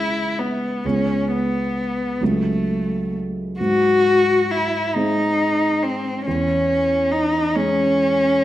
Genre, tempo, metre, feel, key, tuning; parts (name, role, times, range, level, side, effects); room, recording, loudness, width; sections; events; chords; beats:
classical, romantic duo for cello and grand piano; 43-47 BPM (dotted quarters); 6/8; rubato; C# minor; A4 = 440 Hz
rich cello; melody; 0.0-8.4 s; A3 to F#4; -18 LUFS; left 1 dB
dark baby grand piano; accompaniment; 0.0-8.4 s; C#2 to C#4; -23 LUFS; right 1 dB
wet recital hall reverb, RT60 1.4 s; -17 LUFS; side -13 dB against mid
0.0-8.4 A section
0.0 C#m; 0.8 G#m/C#; 2.2 F#m/C#; 3.6 G#; 6.3 C#m/E
| 0.84 2.21 | 3.59 4.94 | 6.26 7.55